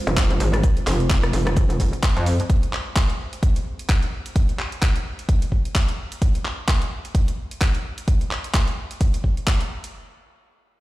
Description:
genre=bass house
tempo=129 BPM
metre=4/4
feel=swing 57% on 16ths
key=F minor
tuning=A4 = 440 Hz
part: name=dark analog pad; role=sustained chords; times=0.0-6.2 s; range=Ab3 to C5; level=-36 LUFS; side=right 2 dB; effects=none
part: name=warm symphonic string section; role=texture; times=0.0-2.5 s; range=Ab3 to F4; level=-43 LUFS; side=left 3 dB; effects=none
part: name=metallic wobble bass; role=bass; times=0.1-2.4 s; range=F1 to F2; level=-20 LUFS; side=equal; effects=chorus, tube saturation, sidechain pumping
part: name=house drum kit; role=drums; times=0.1-9.9 s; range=handclaps, hi-hat, rim click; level=-27 LUFS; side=equal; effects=none
part: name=electronic kick drum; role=drums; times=0.2-9.6 s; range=none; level=-19 LUFS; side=equal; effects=none
part: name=electronic snare drum and shaker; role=drums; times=0.2-2.4 s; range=none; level=-39 LUFS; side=right 1 dB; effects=none
room=digital ambience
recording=played on a big sound system in a bare room, stone room reverb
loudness=-19 LUFS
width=side -18 dB against mid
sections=0.0-9.9 A section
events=none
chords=0.0 Fm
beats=0.17 | 0.64 1.10 1.56 2.03 | 2.50 2.96 3.43 3.89 | 4.36 4.82 5.29 5.75 | 6.22 6.68 7.15 7.61 | 8.08 8.54 9.01 9.47

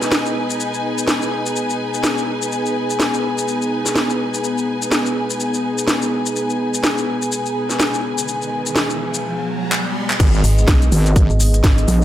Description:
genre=bass house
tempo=125 BPM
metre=4/4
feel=swing 58% on 16ths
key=G# minor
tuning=A4 = 440 Hz
part: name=dark analog pad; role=sustained chords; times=0.0-12.0 s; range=B3 to G#5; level=-22 LUFS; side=left 1 dB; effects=chorus, sidechain pumping
part: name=garage drum kit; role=drums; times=0.0-12.0 s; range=crash cymbal, handclaps, hi-hat, shaker, snare drum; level=-21 LUFS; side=equal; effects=none
part: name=rich studio string section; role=texture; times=0.0-9.2 s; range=D#4 to G#5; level=-24 LUFS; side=equal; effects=sidechain pumping
part: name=riser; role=sound effects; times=7.9-10.2 s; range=none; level=-28 LUFS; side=right 1 dB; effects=none
part: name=wobble bass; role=bass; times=10.2-12.0 s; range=G#1 to A#1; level=-15 LUFS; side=equal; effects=chorus, tube saturation, sidechain pumping
part: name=electronic kick drum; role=drums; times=10.2-11.8 s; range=none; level=-15 LUFS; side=equal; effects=none
part: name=metallic FM bass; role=bass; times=10.4-11.9 s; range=G#1 to B1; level=-15 LUFS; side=equal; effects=tube saturation, sidechain pumping
room=light reverb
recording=none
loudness=-16 LUFS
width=side -12 dB against mid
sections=0.0-10.2 A section; 10.2-12.0 B section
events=riser 7.9-10.2; drum fill 9.7-10.2; drop 10.2-12.0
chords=0.0 G#m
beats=0.12 | 0.60 1.08 1.56 2.04 | 2.52 3.00 3.48 3.96 | 4.44 4.92 5.40 5.88 | 6.36 6.84 7.32 7.80 | 8.28 8.76 9.24 9.72 | 10.20 10.68 11.16 11.64

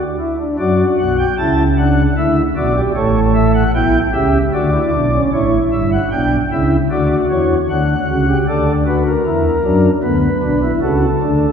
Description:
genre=classical, baroque-style 3-part fugue for pipe organ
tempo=76 BPM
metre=3/4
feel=straight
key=D major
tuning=A4 = 441 Hz
part: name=pipe organ, flutes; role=solo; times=0.0-11.5 s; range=G1 to A5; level=-13 LUFS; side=equal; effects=none
room=wet concert hall reverb, RT60 2.2 s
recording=heard from further back in the room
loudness=-13 LUFS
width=side -7 dB against mid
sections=0.6-5.3 A section; 5.3-11.5 B section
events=none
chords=0.0 N.C.; 0.6 D; 2.2 Em7/D; 2.9 A7; 4.5 D; 5.3 A7; 6.9 D; 9.3 F#7/E; 10.0 Bm7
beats=| 0.59 1.38 2.17 | 2.95 3.73 4.53 | 5.32 6.12 6.91 | 7.69 8.48 9.26 | 10.04 10.82

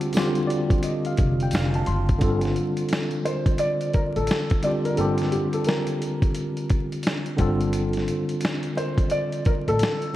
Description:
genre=lo-fi hip hop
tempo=87 BPM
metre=4/4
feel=swing 63% on 16ths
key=unclear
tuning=A4 = 441 Hz
part: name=felt-muted upright piano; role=melody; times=0.0-10.2 s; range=G4 to D5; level=-27 LUFS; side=equal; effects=analog chorus, low-pass filter
part: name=tine electric piano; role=accompaniment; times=0.0-10.2 s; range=D3 to C6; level=-25 LUFS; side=equal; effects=overdrive, medium stereo tremolo, cassette tape, low-pass filter
part: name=dusty soul sampler-style drum kit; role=drums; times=0.0-10.1 s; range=hi-hat, kick drum, snare drum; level=-25 LUFS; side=equal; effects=none
part: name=tambourine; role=percussion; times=0.1-1.7 s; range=none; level=-44 LUFS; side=right 3 dB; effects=none
part: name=upright bass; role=bass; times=1.2-9.8 s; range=F1 to A1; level=-26 LUFS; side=equal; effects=none
room=moderate plate reverb, RT60 3.4 s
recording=dreamy mix soaked in reverb, vinyl crackle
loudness=-21 LUFS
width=side -14 dB against mid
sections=0.0-2.2 A section; 2.2-10.2 B section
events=tine electric piano fill 0.1-2.2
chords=0.0 F; 2.2 Dm7/G; 5.0 Gm7; 7.4 Csus4/G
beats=0.15 0.84 1.53 | 2.22 2.91 3.60 4.29 | 4.97 5.67 6.35 7.04 | 7.73 8.42 9.11 9.80

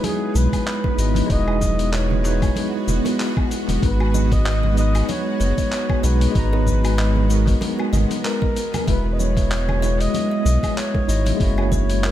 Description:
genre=sunset chillout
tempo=95 BPM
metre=4/4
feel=swing 56% on 16ths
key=unclear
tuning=A4 = 440 Hz
part: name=breathy flugelhorn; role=melody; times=0.0-12.1 s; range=G#4 to D#5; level=-28 LUFS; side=equal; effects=analog delay
part: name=tine electric piano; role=accompaniment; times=0.0-12.1 s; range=G#3 to A#5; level=-25 LUFS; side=moving between left 5 dB and right 2 dB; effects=medium stereo tremolo, auto-pan, analog delay
part: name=shimmering ambient pad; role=sustained chords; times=0.0-12.1 s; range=E3 to F#4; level=-27 LUFS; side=right 1 dB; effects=chorus, built-in reverb
part: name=dusty soul sampler-style drum kit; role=drums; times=0.0-12.1 s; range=cabasa, handclaps, hi-hat, woodblock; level=-30 LUFS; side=left 2 dB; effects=none
part: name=congas and bongos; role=percussion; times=0.0-12.1 s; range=none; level=-32 LUFS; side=right 2 dB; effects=none
part: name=warm sub bass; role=bass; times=0.3-12.1 s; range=E1 to B1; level=-19 LUFS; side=equal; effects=tube saturation
part: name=electronic kick drum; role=drums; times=0.5-11.9 s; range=none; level=-22 LUFS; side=equal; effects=none
part: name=buzzing kalimba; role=arpeggios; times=4.0-12.1 s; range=F#4 to E5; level=-34 LUFS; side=left 2 dB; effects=analog delay
room=light reverb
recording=echo-heavy mix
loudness=-17 LUFS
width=side -12 dB against mid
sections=0.0-12.1 A section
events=none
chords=0.0 Emaj7; 3.8 G#m7; 8.6 Emaj7; 11.4 F#9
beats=0.04 0.67 | 1.30 1.93 2.56 3.19 | 3.83 4.46 5.09 5.72 | 6.35 6.98 7.61 8.25 | 8.88 9.51 10.14 10.77 | 11.40 12.04

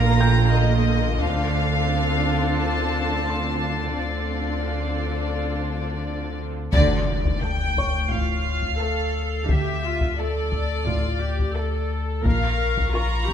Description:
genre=cinematic, suspense film score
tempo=87 BPM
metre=4/4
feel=straight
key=D harmonic minor from 6.7 s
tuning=A4 = 440 Hz
part: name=rich studio violin section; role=melody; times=0.0-13.3 s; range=D5 to Bb5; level=-28 LUFS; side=left 2 dB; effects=none
part: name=rich studio violin section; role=second line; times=0.0-13.3 s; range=A3 to Bb4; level=-31 LUFS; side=equal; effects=none
part: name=clear studio viola section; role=accompaniment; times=0.0-13.3 s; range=D3 to Bb4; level=-29 LUFS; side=equal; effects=none
part: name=dark studio double bass section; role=bass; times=0.0-12.8 s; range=A1 to D2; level=-27 LUFS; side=right 5 dB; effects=none
part: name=warm studio cello section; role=bass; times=0.0-12.8 s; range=A2 to D3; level=-28 LUFS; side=right 3 dB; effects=none
part: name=warm sub bass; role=drone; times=0.0-13.3 s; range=Bb1 to D2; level=-26 LUFS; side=left 2 dB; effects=none
part: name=felt-muted upright piano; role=texture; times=0.0-13.3 s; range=C#5 to G6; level=-36 LUFS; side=left 1 dB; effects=none
part: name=taiko ensemble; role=drums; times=1.2-2.6, 6.7-13.3 s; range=none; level=-27 LUFS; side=left 1 dB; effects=none
part: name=warm chamber violin section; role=texture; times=1.2-6.4, 12.3-13.3 s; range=B5 to C7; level=-34 LUFS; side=left 3 dB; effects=none
part: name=impact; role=sound effects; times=6.7-9.5 s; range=none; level=-29 LUFS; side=left 1 dB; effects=none
room=moderate scoring stage reverb, RT60 1.9 s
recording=minimal, uncompressed stereo recording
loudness=-20 LUFS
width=side -8 dB against mid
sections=0.0-6.7 A section; 6.7-13.3 B section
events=band accent 6.7-7.4; impact 6.7-9.5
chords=0.0 Bb; 1.2 Dm7; 6.7 Dm; 12.2 Bbm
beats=0.53 | 1.22 1.91 2.60 3.28 | 3.97 4.66 5.35 6.04 | 6.73 7.42 8.11 8.80 | 9.49 10.18 10.87 11.56 | 12.25 12.94

